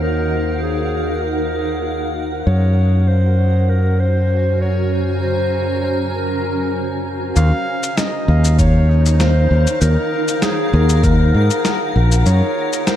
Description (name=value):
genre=ambient dub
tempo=98 BPM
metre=4/4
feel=swing 54% on 16ths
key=Eb dorian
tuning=A4 = 440 Hz
part: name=mellow clarinet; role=melody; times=0.0-13.0 s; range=Ab4 to F5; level=-22 LUFS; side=equal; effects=dub echo
part: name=granular cloud pad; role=sustained chords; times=0.0-13.0 s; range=Db4 to Bb5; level=-22 LUFS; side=equal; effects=built-in reverb
part: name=fingered electric bass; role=bass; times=0.0-12.4 s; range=Bb1 to Ab2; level=-15 LUFS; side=equal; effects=none
part: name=wind-like tuned noise texture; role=texture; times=0.0-13.0 s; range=Gb4 to Bb5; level=-31 LUFS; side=equal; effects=built-in reverb
part: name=electronic cabasa and snare drum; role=drums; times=7.4-13.0 s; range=none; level=-22 LUFS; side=equal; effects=none
part: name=electronic kick drum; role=drums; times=8.6-11.2 s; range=none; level=-17 LUFS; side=equal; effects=none
room=light reverb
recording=none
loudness=-14 LUFS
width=side -11 dB against mid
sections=0.0-7.4 A section; 7.4-13.0 B section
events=none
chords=0.0 Ebm; 2.5 Gbmaj7; 7.4 Ebm7; 12.3 Gbmaj7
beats=| 0.02 0.63 1.24 1.85 | 2.46 3.08 3.69 4.30 | 4.91 5.53 6.14 6.75 | 7.36 7.97 8.59 9.20 | 9.81 10.42 11.04 11.65 | 12.26 12.87